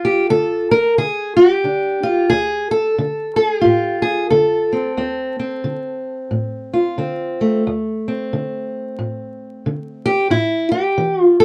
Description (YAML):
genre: acoustic country blues, solo or duo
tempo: 90 BPM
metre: 4/4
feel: swing 61% on 8ths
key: D minor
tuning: A4 = 440 Hz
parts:
  - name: fingerpicked steel-string acoustic guitar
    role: solo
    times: 0.0-11.4 s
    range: D2 to Bb4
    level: -18 LUFS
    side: equal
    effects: none
room: light reverb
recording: close, detailed microphones, vinyl crackle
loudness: -18 LUFS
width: mono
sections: 0.0-11.4 A section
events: none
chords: 0.0 G5; 2.3 Dm7; 10.3 A5